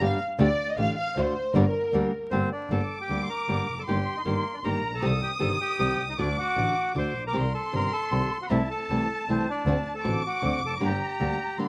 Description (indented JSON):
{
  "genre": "tango",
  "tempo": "156 BPM",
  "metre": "3/4",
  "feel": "rubato",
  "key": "G harmonic minor",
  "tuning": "A4 = 438 Hz",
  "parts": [
    { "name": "dark studio violin section", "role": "second line", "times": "0.0-11.7 s", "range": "Bb4 to Eb6", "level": "-33 LUFS", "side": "equal", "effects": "none" },
    { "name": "nylon-string guitar", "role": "accompaniment", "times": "0.0-11.7 s", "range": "C3 to G4", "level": "-31 LUFS", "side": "equal", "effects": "none" },
    { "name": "clear double bass", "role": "bass", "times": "0.0-11.4 s", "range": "F1 to D2", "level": "-31 LUFS", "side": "equal", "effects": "none" },
    { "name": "bandoneon", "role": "melody", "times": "2.3-11.6 s", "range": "Bb3 to C6", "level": "-33 LUFS", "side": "equal", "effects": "none" }
  ],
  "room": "little or no reverb",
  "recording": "recorded outdoors, with no room sound, vinyl crackle",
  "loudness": "-27 LUFS",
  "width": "mono",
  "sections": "0.0-2.7 A section; 2.7-11.7 B section",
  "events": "violin section solo 0.0-2.7",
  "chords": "0.4 Dsus4; 1.2 D; 1.5 Gm; 3.9 Eb/G; 5.0 Cm; 6.2 D; 7.3 Cm; 8.5 Am/C; 9.7 D7; 10.8 Gm"
}